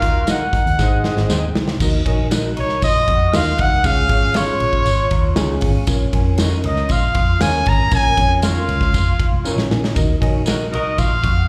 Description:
uptempo 1960s-style soul; 118 BPM; 4/4; straight; A4 = 439 Hz
clear trumpet; melody; 0.0-11.5 s; Db5 to Bb5; -21 LUFS; equal; plate reverb
clear horn section; second line; 0.0-1.5, 10.5-11.1 s; Eb4 to Eb5; -32 LUFS; equal; plate reverb, slapback echo
glockenspiel with soft plastic mallets; second line; 0.0-11.5 s; Db6 to Bb6; -38 LUFS; equal
tine electric piano; accompaniment; 0.0-11.0 s; Db4 to Bb5; -28 LUFS; equal; overdrive, plate reverb, slapback echo
electric guitar through a small old amp; riff; 0.0-11.4 s; Bb3 to Gb4; -33 LUFS; equal; ensemble chorus, slapback echo
vintage muted fingered electric bass; bass; 0.0-11.5 s; F1 to Bb2; -22 LUFS; equal
natural country drum kit; drums; 0.0-11.4 s; crash cymbal, hi-hat, kick drum, ride cymbal, snare drum; -22 LUFS; equal
electric guitar through a small old amp; stabs; 0.3-10.6 s; F4 to Eb5; -32 LUFS; equal; spring reverb, plate reverb, slapback echo
tambourine; percussion; 0.3-11.1 s; -34 LUFS; equal
little or no reverb; live gig heard through the venue's PA, club reverb; -17 LUFS; mono
0.0-1.8 A section; 1.8-11.5 B section
drum fill 0.8-1.8, 9.4-10.0; tine electric piano fill 4.9-5.9
0.0 Ebm; 0.8 Ab; 1.8 Ebm; 3.8 Db; 5.9 Bbm; 10.0 Ebm
0.28 0.79 1.30 | 1.80 2.31 2.82 3.33 | 3.84 4.35 4.86 5.37 | 5.88 6.39 6.90 7.41 | 7.92 8.43 8.94 9.45 | 9.96 10.46 10.98

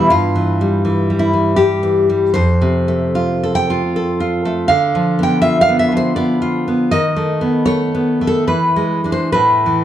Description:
romantic piece for solo classical guitar; 68-85 BPM; 3/4; rubato; A4 = 440 Hz
nylon-string guitar; solo; 0.0-9.8 s; F2 to G5; -13 LUFS; equal
moderate recital hall reverb, RT60 1.4 s; dark, warm production; -13 LUFS; side -11 dB against mid
0.0-9.8 A section
0.1 Em/G; 2.4 F; 4.7 Bdim/D; 6.9 B7/D#; 8.5 E7
| 0.10 0.82 1.54 | 2.35 3.14 3.94 | 4.68 5.41 6.16 | 6.92 7.68 8.49 | 9.35

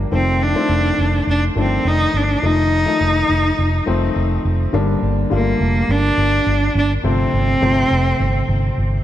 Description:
1980s-style pop; 104 BPM; 4/4; straight; A4 = 440 Hz
warm baby grand piano; accompaniment; 0.0-9.0 s; C3 to Bb5; -21 LUFS; left 3 dB
vintage muted fingered electric bass; bass; 0.0-9.0 s; F1 to G1; -18 LUFS; equal
rich cello; melody; 0.1-8.7 s; Bb3 to Eb4; -19 LUFS; right 1 dB; ping-pong delay
moderate lush hall reverb, RT60 2.7 s; dark, warm production; -15 LUFS; side -12 dB against mid
0.0-4.7 A section; 4.7-9.0 B section
0.1 F7; 4.7 Gm; 7.0 F
| 0.12 0.69 1.27 1.85 | 2.43 3.00 3.58 4.16 | 4.73 5.31 5.89 6.46 | 7.04 7.62 8.20 8.77

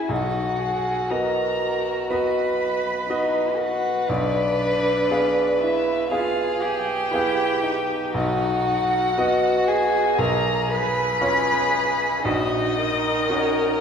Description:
classical, slow romantic movement for piano quartet; 59 BPM; 4/4; rubato; B major; A4 = 440 Hz
muted violin; melody; 0.0-13.8 s; D5 to B5; -25 LUFS; left 3 dB
muted cello; second line; 0.0-13.8 s; D4 to B4; -26 LUFS; right 2 dB
muted violin; second line; 0.0-13.8 s; D#4 to B4; -26 LUFS; left 1 dB
bright grand piano; accompaniment; 0.0-13.8 s; A#1 to F5; -25 LUFS; right 1 dB
wet scoring stage reverb, RT60 1.9 s; heard from further back in the room; -20 LUFS; side -7 dB against mid
0.0-13.8 A section
0.1 B; 4.1 Bdim7; 8.1 B; 10.2 C#7/B; 12.2 F#/A#
| 0.10 1.11 2.11 3.10 | 4.09 5.10 6.11 7.12 | 8.14 9.17 10.19 11.21 | 12.25 13.30

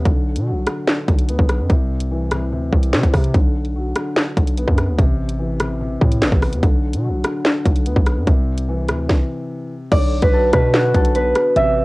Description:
hip hop, drill; 146 BPM; 4/4; half-time; B phrygian; A4 = 440 Hz
felt-muted upright piano; accompaniment; 0.0-11.8 s; C3 to C4; -25 LUFS; left 1 dB; cassette tape
hard-hitting 808-style bass; bass; 0.0-11.8 s; G1 to C3; -20 LUFS; equal
drill drum kit; drums; 0.1-11.7 s; crash cymbal, handclaps, hi-hat, kick drum, rim click, snare drum; -16 LUFS; equal
concert harp; melody; 9.9-11.8 s; F#4 to E5; -16 LUFS; right 1 dB; cassette tape
little or no reverb; home recording on cassette; -15 LUFS; side -22 dB against mid
0.0-9.9 A section; 9.9-11.8 B section
break 0.0-3.3; stop 9.1-9.9
0.1 Bm; 1.7 C; 3.3 Bm; 5.0 Amadd9; 6.6 Bm; 8.3 C; 9.9 Bm
| 0.05 0.47 0.88 1.29 | 1.70 2.11 2.52 2.93 | 3.34 3.75 4.16 4.57 | 4.99 5.40 5.81 6.22 | 6.63 7.04 7.45 7.86 | 8.27 8.68 9.10 9.51 | 9.92 10.33 10.74 11.15 | 11.56

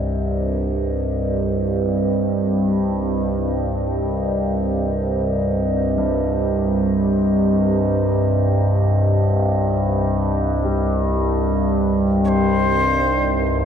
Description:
dark ambient drone; free time; A4 = 441 Hz
dark analog pad; sustained chords; 0.0-13.7 s; C3 to Eb5; -26 LUFS; right 1 dB; wide subtle chorus
dark grand piano; arpeggios; 0.0-13.7 s; G2 to G3; -32 LUFS; left 1 dB
overtone-sweeping drone; drone; 0.0-13.7 s; C2 to G2; -18 LUFS; equal; chorus, built-in reverb, phaser
quartz singing bowl; texture; 0.0-13.7 s; barely audible
bright shakuhachi; melody; 12.2-13.7 s; C5 to Db5; -20 LUFS; left 2 dB
wet cathedral reverb, RT60 6.9 s; dark, warm production; -17 LUFS; side -8 dB against mid
0.0-13.7 A section
fade-in on analog synth pad 0.0-13.7
0.0 Cm; 12.3 Cm7
free time

